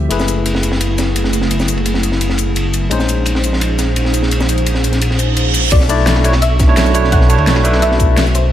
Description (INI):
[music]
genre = liquid drum and bass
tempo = 171 BPM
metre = 4/4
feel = straight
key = B dorian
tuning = A4 = 440 Hz
[part]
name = barky tine electric piano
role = accompaniment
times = 0.0-8.2 s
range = G#3 to D5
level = -19 LUFS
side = moving between left 8 dB and right 7 dB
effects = auto-pan, low-pass filter, dub echo
[part]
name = airy breathy pad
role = sustained chords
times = 0.0-8.5 s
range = A3 to C#6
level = -22 LUFS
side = equal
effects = chorus
[part]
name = dark detuned saw bass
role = bass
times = 0.0-8.5 s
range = F#1 to D2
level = -15 LUFS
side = equal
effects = none
[part]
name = crunchy breakbeat drum kit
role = drums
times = 0.1-8.4 s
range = ride cymbal, snare drum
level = -21 LUFS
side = equal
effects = high-pass filter on cymbals, studio ambience, high-pass filter on snare, high-pass filter on room
[part]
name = pop drum kit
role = drums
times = 0.1-8.4 s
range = crash cymbal, hi-hat, shaker, snare drum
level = -22 LUFS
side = left 2 dB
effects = studio ambience
[part]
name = reverse cymbal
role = sound effects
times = 5.1-5.7 s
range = none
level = -19 LUFS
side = right 6 dB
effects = none
[part]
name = soft round pluck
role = melody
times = 5.7-8.5 s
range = C5 to F#5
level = -22 LUFS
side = left 1 dB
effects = ensemble chorus, dub echo
[part]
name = electronic kick drum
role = drums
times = 5.7-8.1 s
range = none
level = -13 LUFS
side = equal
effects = studio ambience
[sound]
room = digital ambience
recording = none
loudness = -12 LUFS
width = side -12 dB against mid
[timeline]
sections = 0.0-5.7 A section; 5.7-8.5 B section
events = filter sweep on tine electric piano 0.0-5.7; reverse cymbal 5.1-5.7; drop 5.7-8.5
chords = 0.1 F#m11; 2.9 A#m11; 5.7 Bm11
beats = | 0.11 0.46 0.81 1.16 | 1.51 1.86 2.21 2.56 | 2.91 3.26 3.62 3.97 | 4.32 4.67 5.02 5.37 | 5.72 6.07 6.42 6.77 | 7.12 7.47 7.83 8.18